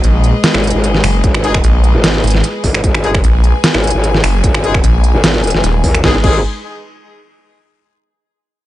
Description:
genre	heavy wobble dubstep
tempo	150 BPM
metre	4/4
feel	swing 54% on 16ths, half-time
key	G# minor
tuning	A4 = 440 Hz
part	bright chamber string section	sustained chords	0.0-6.2 s	G#3 to G#5	-21 LUFS	left 3 dB	sidechain pumping
part	growl bass	bass	0.0-6.4 s	F#1 to D#2	-14 LUFS	equal	chorus, overdrive
part	snarling distorted saw bass	bass	0.0-5.8 s	D#1 to A#1	-11 LUFS	equal	distortion, overdrive
part	dubstep drum kit	drums	0.0-6.3 s	crash cymbal, finger snaps, hi-hat, snare drum	-16 LUFS	right 1 dB	none
part	electronic kick drum	drums	1.2-6.3 s	none	-15 LUFS	equal	none
part	bright brass ensemble	stabs	1.4-6.4 s	G#3 to G#4	-21 LUFS	left 4 dB	digital delay
room	digital ambience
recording	nothing above 10.3 kHz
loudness	-10 LUFS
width	side -15 dB against mid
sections	0.0-6.0 A section; 6.0-7.6 B section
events	drop 0.0-6.0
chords	0.0 G#m; 6.0 G#5

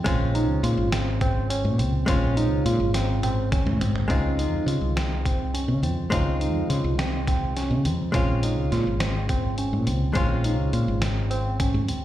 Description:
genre	progressive instrumental, band music in an uneven meter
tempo	208 BPM (eighths)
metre	7/8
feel	straight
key	unclear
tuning	A4 = 438 Hz
part	hollow-body jazz guitar	accompaniment	0.0-12.0 s	Ab3 to F4	-30 LUFS	left 3 dB	slapback echo
part	barky tine electric piano	arpeggios	0.0-12.0 s	C4 to F4	-29 LUFS	right 3 dB	phaser, slapback echo
part	woody fretless electric bass	bass	0.1-12.0 s	Ab1 to Db3	-24 LUFS	equal	none
part	trip hop sampler-style drum kit	drums	0.1-12.0 s	hi-hat, kick drum, snare drum, toms	-28 LUFS	equal	none
room	light reverb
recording	live gig heard through the venue's PA, recital hall reverb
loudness	-21 LUFS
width	side -13 dB against mid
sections	0.0-4.1 A section; 4.1-12.0 B section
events	drum fill 2.9-4.1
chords	0.1 Bbm7; 4.1 Dbmaj7; 8.1 Bbm7

